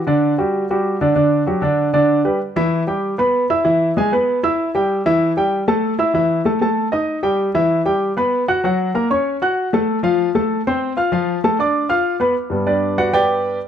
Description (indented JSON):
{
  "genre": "jazz",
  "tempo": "193 BPM",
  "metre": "4/4",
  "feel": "straight",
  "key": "unclear",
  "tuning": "A4 = 440 Hz",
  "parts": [
    { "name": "warm baby grand piano", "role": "solo", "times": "0.1-13.6 s", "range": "G2 to F#6", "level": "-15 LUFS", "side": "equal", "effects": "none" }
  ],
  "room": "moderate large studio reverb, RT60 0.9 s",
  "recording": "dark, warm production",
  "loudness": "-15 LUFS",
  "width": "side -9 dB against mid",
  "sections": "0.0-2.4 A section; 2.4-12.4 B section; 12.4-13.7 C section",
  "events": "grand piano solo 12.4-13.7",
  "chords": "0.0 D; 1.8 G; 2.4 Em; 3.7 E; 4.9 A5; 6.1 Esus4; 6.8 Eb; 7.4 Em; 8.6 F#; 9.9 F; 11.1 Dm; 11.7 Bdim; 12.4 Gmaj7"
}